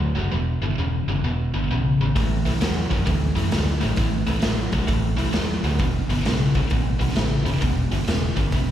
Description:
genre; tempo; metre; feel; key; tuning
blues rock power trio and southern rock; 132 BPM; 4/4; swing 65% on 8ths; E minor; A4 = 438 Hz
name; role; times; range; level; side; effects
tight distorted guitar; riff; 0.0-8.7 s; E2 to F#3; -24 LUFS; equal; distortion
vintage muted fingered electric bass; bass; 0.0-8.7 s; E1 to F#2; -24 LUFS; equal; none
raw garage drum kit; drums; 2.2-8.7 s; hi-hat, kick drum, snare drum; -24 LUFS; equal; none
room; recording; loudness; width
light reverb; live gig heard through the venue's PA, recital hall reverb; -20 LUFS; side -11 dB against mid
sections
0.0-8.7 A section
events
none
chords
0.3 Em; 2.2 Am; 5.8 Em

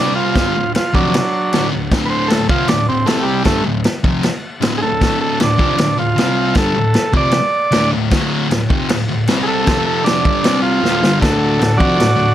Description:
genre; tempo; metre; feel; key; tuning
garage rock duo or trio; 155 BPM; 4/4; straight; unclear; A4 = 440 Hz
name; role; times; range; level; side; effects
combo organ; melody; 0.0-12.3 s; F#3 to D5; -17 LUFS; right 2 dB; none
thick fuzz guitar; riff; 0.0-12.3 s; D2 to C4; -17 LUFS; left 1 dB; distortion
vintage drum kit; drums; 0.4-12.1 s; crash cymbal, kick drum, snare drum; -18 LUFS; equal; none
combo organ; sustained chords; 11.2-12.3 s; D4 to A4; -24 LUFS; left 2 dB; spring reverb
room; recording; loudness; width
light reverb; none; -13 LUFS; side -12 dB against mid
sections
0.0-12.3 A section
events
transistor combo organ solo 0.0-12.3; drum fill 10.8-11.2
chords
0.4 D; 3.1 C5; 3.5 D5; 6.2 C5; 6.6 D5; 9.3 C5; 9.7 F5; 10.2 G5; 10.4 C5; 10.8 D

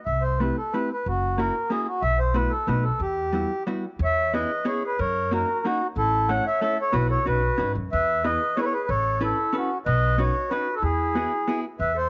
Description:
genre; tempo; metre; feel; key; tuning
musette waltz; 184 BPM; 3/4; straight; E harmonic minor, E major from 4.0 s; A4 = 436 Hz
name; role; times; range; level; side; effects
mellow accordion; melody; 0.1-12.1 s; F#4 to F#5; -27 LUFS; equal; none
upright bass; bass; 0.1-12.1 s; F#1 to G#2; -29 LUFS; equal; none
vintage hollow-body jazz guitar; accompaniment; 0.4-11.6 s; G3 to B4; -31 LUFS; equal; none
warm clarinet; second line; 4.0-12.1 s; C#4 to C#5; -34 LUFS; equal; none
room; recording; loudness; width
light reverb, studio ambience; nothing above 7.6 kHz; -24 LUFS; mono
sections
0.0-4.0 A section; 4.0-11.8 B section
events
none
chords
0.1 C6; 1.1 F#7; 2.0 B7sus4; 2.7 B7; 3.0 Emadd9; 4.0 E6; 5.0 F#6; 6.0 A; 6.9 Bsus4; 7.2 Badd9; 7.9 E; 8.9 Aadd9; 9.9 Badd9; 10.8 Eadd9

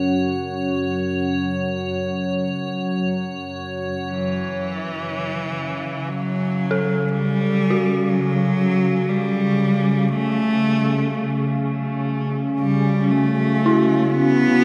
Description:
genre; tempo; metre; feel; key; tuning
dark ambient drone; free time; none; none; F# minor; A4 = 440 Hz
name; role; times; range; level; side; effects
dark analog pad; sustained chords; 0.0-4.1, 12.9-14.6 s; C#4 to F#5; -27 LUFS; equal; chorus, phaser
organ-like drone; drone; 0.0-14.6 s; F#2 to F#3; -26 LUFS; equal; ensemble chorus, built-in reverb
icy glass pad; texture; 0.0-4.1 s; C#5; -32 LUFS; equal; chorus, built-in reverb
clear cello; melody; 4.1-14.6 s; E3 to B3; -23 LUFS; equal; tape echo
dark detuned synth bell; arpeggios; 6.7-14.6 s; E4 to A4; -27 LUFS; equal; chorus, tape echo
room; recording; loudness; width
wet cathedral reverb, RT60 5.0 s; in a vast, echoing space; -21 LUFS; mono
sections
0.0-4.1 A section; 4.1-14.6 B section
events
none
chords
0.0 F#5

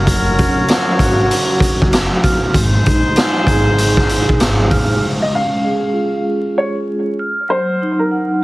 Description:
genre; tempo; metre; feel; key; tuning
hip hop, boom-bap hip-hop; 97 BPM; 4/4; swing 63% on 16ths; unclear; A4 = 440 Hz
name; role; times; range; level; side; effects
vibraphone with medium mallets; accompaniment; 0.0-8.4 s; Gb3 to F6; -18 LUFS; right 1 dB; cassette tape, high-pass filter, low-pass filter
clear horn section; stabs; 0.0-4.7 s; Eb4 to Db5; -21 LUFS; left 2 dB; high-pass filter, low-pass filter, tape echo
upright bass; bass; 0.0-5.0 s; Gb1 to Bb1; -18 LUFS; equal; none
raw garage drum kit; drums; 0.1-4.9 s; hi-hat, kick drum, rim click, snare drum; -15 LUFS; equal; none
warm upright piano; melody; 5.2-8.3 s; Bb4 to F5; -19 LUFS; equal; high-pass filter, low-pass filter, tape echo
room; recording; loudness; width
moderate studio ambience, RT60 0.5 s; heavily compressed radio sound, multiband compression, vinyl crackle; -13 LUFS; side -19 dB against mid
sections
0.0-5.0 A section; 5.0-8.4 B section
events
none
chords
0.0 Gb; 2.5 Ab; 5.0 Db/Ab; 7.2 Ebm

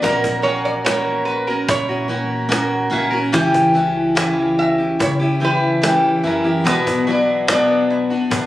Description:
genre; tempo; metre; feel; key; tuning
acoustic folk duo or small band; 72 BPM; 4/4; straight; unclear; A4 = 444 Hz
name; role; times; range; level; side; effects
lap resonator guitar; second line; 0.0-7.9 s; A#4 to E5; -21 LUFS; right 1 dB; none
picked steel-string acoustic guitar; accompaniment; 0.0-8.5 s; B2 to A#4; -18 LUFS; left 1 dB; none
mandolin; arpeggios; 0.0-8.5 s; D4 to A#4; -23 LUFS; equal; none
upright bass; bass; 0.0-8.5 s; A#1 to C#3; -27 LUFS; equal; none
cajon; percussion; 0.0-8.5 s; none; -21 LUFS; equal; none
room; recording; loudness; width
moderate large studio reverb, RT60 1.3 s; recorded on a phone in the room, club reverb, compression; -15 LUFS; side -14 dB against mid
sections
0.0-8.5 A section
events
resonator guitar played with a steel bar solo 0.0-8.5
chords
0.0 F#/A#; 3.3 C#dim; 6.7 Bm

